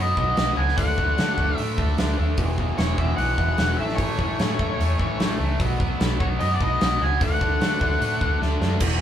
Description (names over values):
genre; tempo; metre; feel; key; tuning
blues rock power trio and southern rock; 149 BPM; 4/4; straight; unclear; A4 = 439 Hz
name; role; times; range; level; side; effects
octave-fuzz lead guitar; melody; 0.0-8.4 s; C#5 to G#5; -25 LUFS; left 1 dB; distortion
cranked stack guitar; riff; 0.0-9.0 s; E2 to D4; -27 LUFS; equal; overdrive
vintage muted fingered electric bass; bass; 0.0-9.0 s; E1 to D3; -25 LUFS; equal; none
big rock drum kit; drums; 0.2-8.9 s; crash cymbal, hi-hat, kick drum, snare drum; -25 LUFS; equal; none
room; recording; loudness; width
moderate studio reverb, RT60 0.6 s; band playing live in one room; -20 LUFS; side -10 dB against mid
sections
0.0-8.8 A section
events
drum fill 8.4-8.8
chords
0.0 B; 0.8 D; 2.4 E5; 3.8 A; 5.6 B; 7.2 D